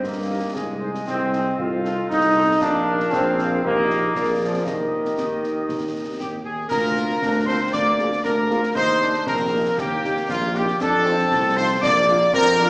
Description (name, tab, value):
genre	military-style march for wind band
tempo	117 BPM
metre	2/4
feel	straight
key	Eb major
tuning	A4 = 441 Hz
part	warm woodwind section	second line	0.0-12.7 s	F4 to F5	-26 LUFS	equal	none
part	warm trombone section	sustained chords	0.0-12.7 s	Eb3 to F4	-23 LUFS	equal	none
part	mellow tuba	bass	0.0-12.7 s	Bb1 to G2	-27 LUFS	equal	none
part	concert snare drum, concert bass drum and clash cymbals	drums	0.0-12.7 s	none	-32 LUFS	equal	none
part	clear trumpet section	melody	0.3-12.7 s	F4 to F5	-24 LUFS	equal	none
part	mellow French horn section	accompaniment	0.3-12.7 s	F3 to Bb4	-28 LUFS	equal	none
part	mellow wooden piccolo	second line	6.2-12.7 s	F5 to D6	-24 LUFS	equal	none
room	wet scoring stage reverb, RT60 1.7 s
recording	recorded in a church or concert hall, small speaker sound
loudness	-18 LUFS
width	side -26 dB against mid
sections	0.0-6.7 A section; 6.7-12.7 B section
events	none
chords	0.0 Eb/G; 0.6 Ab/C; 1.6 F7/C; 2.6 Bb; 3.6 Eb/Bb; 4.1 Bb7; 4.7 Eb; 6.7 Bb/D; 7.7 Bb7/D; 8.8 Eb; 10.8 F7; 11.8 Bb